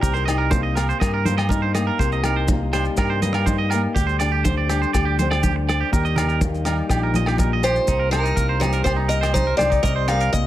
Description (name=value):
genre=highlife guitar band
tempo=122 BPM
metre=4/4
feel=straight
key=C minor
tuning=A4 = 441 Hz
part: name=flamenco guitar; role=accompaniment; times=0.0-10.5 s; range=G2 to Bb4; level=-26 LUFS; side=left 6 dB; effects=none
part: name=twangy electric guitar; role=arpeggios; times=0.0-10.3 s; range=Eb4 to Eb5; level=-25 LUFS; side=right 8 dB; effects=tape echo
part: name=fingered electric bass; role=bass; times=0.0-10.5 s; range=Bb1 to G2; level=-22 LUFS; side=equal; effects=none
part: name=damped 70s drum kit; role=drums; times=0.0-10.5 s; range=hi-hat, kick drum, rim click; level=-24 LUFS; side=equal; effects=none
part: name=congas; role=percussion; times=0.0-10.2 s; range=none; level=-28 LUFS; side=right 1 dB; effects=none
part: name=maracas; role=percussion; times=0.0-10.5 s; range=none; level=-36 LUFS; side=left 3 dB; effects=none
part: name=agogo bells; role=percussion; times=0.3-10.2 s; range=none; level=-30 LUFS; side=equal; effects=none
part: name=picked acoustic archtop guitar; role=melody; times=7.6-10.5 s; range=Bb4 to F5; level=-22 LUFS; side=left 1 dB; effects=none
room=light reverb, small room ambience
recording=none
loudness=-18 LUFS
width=side -13 dB against mid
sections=0.0-7.9 A section; 7.9-10.5 B section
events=none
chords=0.0 Cm7; 4.0 Gsus4/D; 5.9 Eb; 7.9 Cm7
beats=| 0.03 0.53 1.02 1.51 | 2.00 2.49 2.98 3.47 | 3.96 4.45 4.94 5.43 | 5.92 6.41 6.90 7.39 | 7.88 8.37 8.87 9.36 | 9.85 10.34